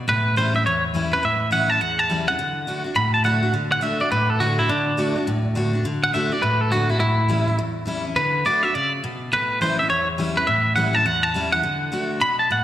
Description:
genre	rock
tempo	207 BPM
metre	4/4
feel	swing 62% on 8ths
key	D major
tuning	A4 = 440 Hz
part	picked steel-string acoustic guitar	accompaniment	0.0-12.6 s	E2 to F#4	-23 LUFS	left 1 dB	slapback echo
part	twangy electric guitar	melody	0.1-12.6 s	D4 to B5	-20 LUFS	right 1 dB	slapback echo, analog delay
room	light reverb, small room reverb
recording	live gig heard through the venue's PA, recital hall reverb, lossy compression artefacts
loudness	-18 LUFS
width	side -12 dB against mid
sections	0.0-3.5 A section; 3.5-12.6 A section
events	none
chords	0.1 A7; 2.4 D; 7.0 A7; 8.2 D; 9.3 A7; 11.6 D

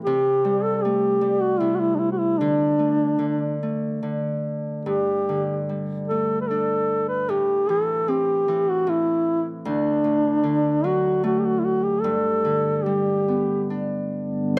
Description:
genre	celtic folk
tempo	69-79 BPM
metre	3/4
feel	rubato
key	G major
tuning	A4 = 445 Hz
part	dark duduk	melody	0.0-13.7 s	D4 to B4	-23 LUFS	equal	none
part	Celtic harp	accompaniment	0.0-14.6 s	D2 to D4	-28 LUFS	equal	none
room	light reverb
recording	close, detailed microphones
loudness	-23 LUFS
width	mono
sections	0.0-14.5 A section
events	none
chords	0.1 C5; 2.4 D5; 4.9 Gsus2; 7.3 Am; 9.7 D; 12.0 G

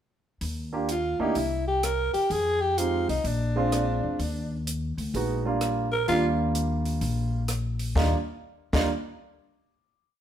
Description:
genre	jazz, small-group swing and bop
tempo	128 BPM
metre	4/4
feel	swing 66% on 8ths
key	Eb major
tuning	A4 = 439 Hz
part	upright bass	bass	0.4-8.9 s	Bb1 to F2	-28 LUFS	left 1 dB	none
part	compact cocktail drum kit	drums	0.4-8.8 s	crash cymbal, hi-hat, kick drum, rim click, snare drum	-33 LUFS	equal	none
part	warm baby grand piano	accompaniment	0.7-8.9 s	G3 to G4	-28 LUFS	right 3 dB	none
part	growling alto saxophone	melody	0.9-8.9 s	D4 to Bb4	-27 LUFS	equal	none
room	moderate large studio reverb, RT60 1.0 s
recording	band playing live in one room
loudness	-24 LUFS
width	side -10 dB against mid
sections	0.4-8.0 A section; 8.0-9.8 final chord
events	none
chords	0.4 Ebmaj9; 1.4 C7; 2.3 Fm9; 3.3 Bb9; 4.2 Ebmaj9

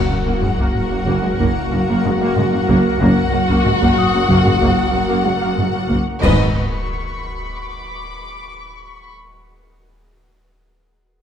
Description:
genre	cinematic, suspense film score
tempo	93 BPM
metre	5/4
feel	straight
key	G# minor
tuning	A4 = 442 Hz
part	muted symphonic violin section	melody	0.0-6.6 s	D#5 to F#5	-24 LUFS	left 4 dB	none
part	muted chamber violin section	second line	0.0-6.6 s	F#4 to B4	-24 LUFS	left 3 dB	none
part	clear French horn section	sustained chords	0.0-6.5 s	A#3 to F#4	-25 LUFS	left 2 dB	none
part	granular cloud pad	sustained chords	0.1-6.6 s	F#4 to F#5	-29 LUFS	equal	built-in reverb
part	bowed-like drone	drone	0.8-6.6 s	F#1	-28 LUFS	equal	none
part	muted symphonic violin section	texture	0.0-9.1 s	B5 to A#6	-32 LUFS	left 3 dB	none
part	muted symphonic viola section	accompaniment	0.1-6.6 s	G#3 to B3	-22 LUFS	right 1 dB	none
part	muted symphonic cello section	riff	0.1-6.1 s	F#2 to F#3	-24 LUFS	right 2 dB	none
part	muted symphonic cello section	bass	0.1-6.6 s	F#2 to G#2	-22 LUFS	right 1 dB	none
part	muted symphonic double bass section	bass	0.1-6.6 s	F#1 to G#1	-23 LUFS	right 2 dB	none
part	large celesta	texture	0.1-6.2 s	D#6 to F#6	-30 LUFS	left 6 dB	none
part	taiko ensemble	drums	0.3-6.5 s	none	-23 LUFS	equal	none
part	clash cymbals and concert bass drum	percussion	6.2-7.5 s	none	-25 LUFS	equal	none
room	moderate scoring stage reverb, RT60 1.7 s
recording	dark, warm production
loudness	-14 LUFS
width	side -8 dB against mid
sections	0.0-6.2 A section; 6.2-9.5 B section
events	band accent 0.0-0.4, 6.2-6.9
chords	0.0 F#; 6.2 G#m

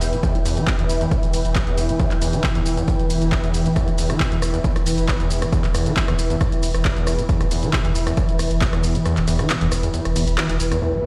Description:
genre	driving peak-time techno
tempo	136 BPM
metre	4/4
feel	straight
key	E minor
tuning	A4 = 436 Hz
part	overdriven acid bass	riff	0.0-11.0 s	E1 to E3	-28 LUFS	equal	distortion, subtle chorus, sidechain pumping, tape echo
part	saturated sub bass	bass	0.0-10.7 s	E1	-26 LUFS	equal	tube saturation, sidechain pumping, low-pass filter
part	swarming drone	drone	0.1-10.9 s	E3	-30 LUFS	equal	built-in reverb, sidechain pumping
part	punchy analog drum machine	drums	0.0-11.0 s	handclaps, hi-hat, rim click, shaker	-29 LUFS	equal	low-pass filter on hats, low-pass filter on cymbals, low-pass filter on perc, low-pass filter on snare, low-pass filter on room
part	granular cloud pad	texture	0.0-11.1 s	E4 to G5	-30 LUFS	equal	built-in reverb, sidechain pumping
part	electronic kick drum	drums	0.2-8.7 s	none	-23 LUFS	equal	none
part	impact	sound effects	10.8-11.1 s	none	-31 LUFS	equal	none
room	light reverb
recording	played on a big sound system in a bare room, stone room reverb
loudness	-20 LUFS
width	mono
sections	0.0-10.8 A section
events	kick drops out 9.1-10.8; band accent 10.4; impact 10.8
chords	0.0 Em

